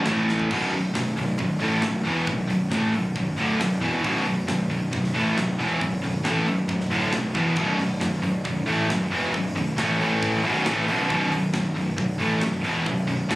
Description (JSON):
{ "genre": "heavy metal", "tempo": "136 BPM", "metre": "4/4", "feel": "straight", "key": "B minor", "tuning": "A4 = 440 Hz", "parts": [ { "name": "biting overdriven guitar", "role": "riff", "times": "0.0-13.4 s", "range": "B1 to A3", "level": "-29 LUFS", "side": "left 1 dB", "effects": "none" }, { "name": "heavy high-gain guitar", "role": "riff", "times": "0.0-13.4 s", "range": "B1 to A3", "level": "-31 LUFS", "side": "left 4 dB", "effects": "distortion" }, { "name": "high-gain distorted guitar", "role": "riff", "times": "0.0-13.4 s", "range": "B1 to A3", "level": "-25 LUFS", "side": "right 1 dB", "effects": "distortion" }, { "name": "fuzz picked electric bass", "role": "bass", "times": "0.0-13.4 s", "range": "B0 to A1", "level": "-29 LUFS", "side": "equal", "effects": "overdrive" }, { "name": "tight metal drum kit", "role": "drums", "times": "0.1-13.4 s", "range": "crash cymbal, hi-hat, kick drum, snare drum, toms", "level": "-32 LUFS", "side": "equal", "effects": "none" } ], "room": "studio reverb", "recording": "recorded on a phone in the room, club reverb", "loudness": "-21 LUFS", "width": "side -18 dB against mid", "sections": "0.5-13.4 A section", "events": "drum fill 0.3", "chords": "0.1 A5; 0.5 Bm; 10.0 A5; 10.4 B5", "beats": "0.07 | 0.51 0.95 1.39 1.83 | 2.27 2.71 3.15 3.60 | 4.04 4.48 4.92 5.36 | 5.80 6.24 6.68 7.12 | 7.56 8.00 8.45 8.89 | 9.33 9.77 10.21 10.65 | 11.09 11.53 11.97 12.42 | 12.86 13.30" }